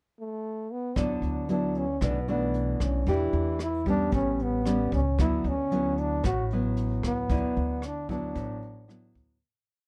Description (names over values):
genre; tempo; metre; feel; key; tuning
bossa nova; 114 BPM; 4/4; straight; D major; A4 = 439 Hz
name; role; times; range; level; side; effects
warm trombone; melody; 0.2-9.1 s; A3 to F#4; -33 LUFS; equal; none
nylon-string guitar; accompaniment; 1.0-9.4 s; A2 to G4; -32 LUFS; equal; none
upright bass; bass; 1.0-9.4 s; A1 to E2; -33 LUFS; equal; none
jazz brush drum kit; drums; 1.0-9.3 s; hi-hat, kick drum, rim click; -38 LUFS; equal; none
room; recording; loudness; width
little or no reverb; dark, warm production; -28 LUFS; mono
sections
0.0-1.0 pickup bar; 1.0-9.4 A section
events
fade-out 7.3-9.4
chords
0.0 N.C.; 1.0 D69; 2.0 Bm7; 3.1 Em7; 4.1 A9; 5.2 D69